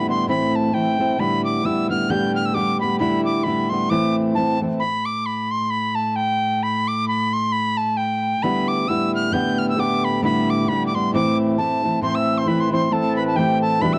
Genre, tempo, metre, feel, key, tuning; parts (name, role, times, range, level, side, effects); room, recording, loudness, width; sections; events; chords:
celtic folk, Celtic polka; 133 BPM; 2/4; swing 56% on 8ths; A minor; A4 = 440 Hz
bright reedy wooden whistle; melody; 0.0-14.0 s; G5 to G6; -25 LUFS; equal; plate reverb
fingerpicked steel-string acoustic guitar; accompaniment; 0.0-4.8, 8.4-14.0 s; E2 to G4; -23 LUFS; equal
warm cello; drone; 0.0-14.0 s; A2; -30 LUFS; equal
mellow accordion; second line; 12.0-14.0 s; G4 to E5; -29 LUFS; equal; plate reverb
moderate studio reverb, RT60 0.5 s; worn, warbling old tape, cassette tape, warbly pitch drift; -21 LUFS; mono
0.0-4.8 A section; 4.8-12.0 A section; 12.0-14.0 B section
0.3 Am; 1.2 Em7/A; 2.1 G/A; 3.0 Em7/A; 3.9 Am; 4.8 N.C.; 8.4 Em7/A; 9.3 G/A; 10.2 Em7/A; 11.1 Am